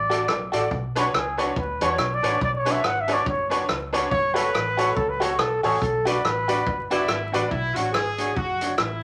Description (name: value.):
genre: ska.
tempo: 141 BPM.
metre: 4/4.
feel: swing 58% on 8ths.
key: B dorian.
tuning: A4 = 440 Hz.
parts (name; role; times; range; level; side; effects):
breathy trumpet; melody; 0.0-7.1 s; G#4 to F#5; -27 LUFS; equal; none.
vintage muted fingered electric bass; bass; 0.0-9.0 s; F#1 to E2; -36 LUFS; equal; none.
clean electric guitar; accompaniment; 0.1-8.7 s; D4 to D5; -33 LUFS; equal; none.
bright upright piano; stabs; 0.1-7.5 s; D4 to D5; -28 LUFS; equal; tube saturation.
vintage drum kit; drums; 0.1-8.9 s; hi-hat, kick drum, rim click; -30 LUFS; equal; none.
warm horn section; melody; 6.9-9.0 s; D4 to G#4; -30 LUFS; equal; none.
room: wet club reverb, RT60 0.7 s.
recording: vinyl crackle.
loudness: -23 LUFS.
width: mono.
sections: 0.0-7.5 A section; 7.5-9.0 B section.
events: trumpet solo 0.0-7.5.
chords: 0.0 D; 0.7 Bmadd9; 4.1 F#m; 5.8 Bm; 7.5 Bmadd9.